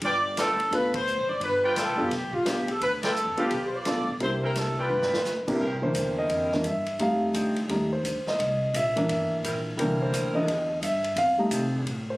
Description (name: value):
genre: jazz, big band swing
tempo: 172 BPM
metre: 4/4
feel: swing 63% on 8ths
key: C major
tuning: A4 = 440 Hz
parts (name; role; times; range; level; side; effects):
- mellow saxophone section; melody; 0.0-5.5 s; F4 to D5; -26 LUFS; equal; none
- clear trumpet section; stabs; 0.0-5.2 s; E4 to G5; -31 LUFS; equal; none
- upright bass; bass; 0.0-12.2 s; F#1 to C3; -34 LUFS; equal; none
- swinging big-band drum kit; drums; 0.0-12.0 s; crash cymbal, hi-hat, kick drum, ride cymbal, snare drum; -35 LUFS; equal; none
- warm grand piano; accompaniment; 0.7-12.2 s; C3 to F5; -26 LUFS; equal; none
- clear saxophone section; sustained chords; 5.6-12.0 s; F3 to Bb4; -36 LUFS; equal; none
room: moderate large studio reverb, RT60 0.9 s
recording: recorded on a phone in the room, club ambience, compression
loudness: -24 LUFS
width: side -19 dB against mid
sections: 0.0-5.6 A section; 5.6-12.2 B section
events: band accent 0.9, 3.0; drum fill 4.9-5.3; grand piano solo 5.6-12.2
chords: 0.0 G7; 4.2 C7; 4.9 G7; 5.6 C7; 7.0 F7; 8.4 C7; 11.2 F7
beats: | 0.02 0.37 0.72 1.07 | 1.42 1.77 2.12 2.46 | 2.81 3.16 3.51 3.86 | 4.21 4.56 4.91 5.26 | 5.61 5.96 6.31 6.65 | 7.00 7.35 7.70 8.05 | 8.40 8.74 9.09 9.44 | 9.79 10.13 10.48 10.83 | 11.18 11.53 11.87